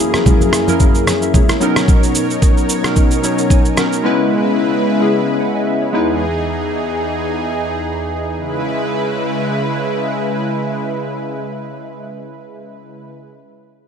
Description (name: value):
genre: amapiano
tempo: 111 BPM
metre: 4/4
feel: swing 55% on 16ths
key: C# dorian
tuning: A4 = 440 Hz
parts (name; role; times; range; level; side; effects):
- warm analog keys; accompaniment; 0.0-6.2 s; F#3 to G#5; -16 LUFS; left 2 dB; chorus
- lush unison pad; sustained chords; 0.0-13.1 s; E2 to C#5; -20 LUFS; equal; chorus
- lo-fi sampler-style drum kit; drums; 0.1-4.0 s; kick drum, rim click, shaker; -14 LUFS; equal; none
- congas; percussion; 0.1-1.5 s; none; -21 LUFS; right 2 dB; none
room: light reverb, digital ambience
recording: none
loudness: -14 LUFS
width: side -7 dB against mid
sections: 0.0-8.4 A section; 8.4-12.7 B section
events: synth keys fill 3.2-4.0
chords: 0.0 F#9; 1.6 Bmaj9; 4.0 C#m7; 5.9 Emaj7; 8.4 C#m7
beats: 0.26 0.80 1.34 | 1.88 2.42 2.96 3.50 | 4.04 4.58 5.12 5.67 | 6.21 6.75 7.29 7.83 | 8.37 8.91 9.45 9.99 | 10.53 11.07 11.61 12.15